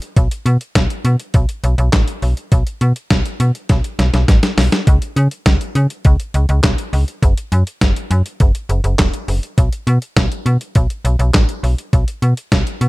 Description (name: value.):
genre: synth-pop.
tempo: 102 BPM.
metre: 4/4.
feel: straight.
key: unclear.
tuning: A4 = 440 Hz.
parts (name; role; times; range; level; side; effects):
detuned 8-bit digital drum machine; drums; 0.0-12.9 s; handclaps, hi-hat, kick drum, snare drum; -15 LUFS; equal; none.
slap-like FM bass; bass; 0.2-12.9 s; E1 to C#3; -14 LUFS; equal; none.
room: little or no reverb.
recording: none.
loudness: -13 LUFS.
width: side -21 dB against mid.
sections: 0.0-4.9 A section; 4.9-12.9 A section.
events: drum fill 3.7-4.9.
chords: none.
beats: | 0.17 0.75 1.34 1.93 | 2.52 3.11 3.69 4.28 | 4.87 5.46 6.05 6.64 | 7.22 7.81 8.40 8.99 | 9.58 10.16 10.75 11.34 | 11.93 12.52.